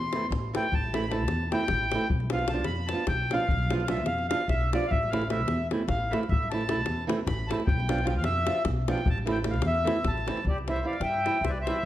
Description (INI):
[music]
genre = balkan folk, Balkan wedding band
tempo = 302 BPM (eighths)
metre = 7/8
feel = straight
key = A minor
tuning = A4 = 441 Hz
[part]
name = accordion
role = second line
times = 0.0-11.8 s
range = G4 to C6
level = -31 LUFS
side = equal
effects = none
[part]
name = upright bass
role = bass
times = 0.0-11.7 s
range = A1 to G2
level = -31 LUFS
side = equal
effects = none
[part]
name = nylon-string guitar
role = accompaniment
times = 0.1-11.8 s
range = E3 to F4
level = -32 LUFS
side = right 3 dB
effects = none
[part]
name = davul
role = percussion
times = 0.1-11.8 s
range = none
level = -31 LUFS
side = left 2 dB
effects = none
[part]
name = accordion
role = melody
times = 10.5-11.9 s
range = D5 to G5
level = -29 LUFS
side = equal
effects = none
[sound]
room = moderate recital hall reverb, RT60 1.3 s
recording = none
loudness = -25 LUFS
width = side -13 dB against mid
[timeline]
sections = 0.0-10.5 A section; 10.5-11.9 B section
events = accordion solo 0.0-10.5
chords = 0.0 Am; 2.1 Bdim; 4.9 Am; 7.7 Bdim; 9.1 Am; 10.5 C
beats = 0.14 0.33 0.53 | 0.73 0.93 1.13 1.32 1.52 1.72 1.92 | 2.12 2.32 2.51 2.71 2.91 3.11 3.31 | 3.51 3.71 3.90 4.10 4.30 4.50 4.70 | 4.90 5.09 5.29 5.49 5.69 5.89 6.09 | 6.29 6.49 6.68 6.88 7.08 7.28 7.48 | 7.68 7.88 8.07 8.27 8.47 8.67 8.87 | 9.07 9.27 9.46 9.66 9.86 10.06 10.26 | 10.46 10.65 10.85 11.05 11.25 11.45 11.64 | 11.84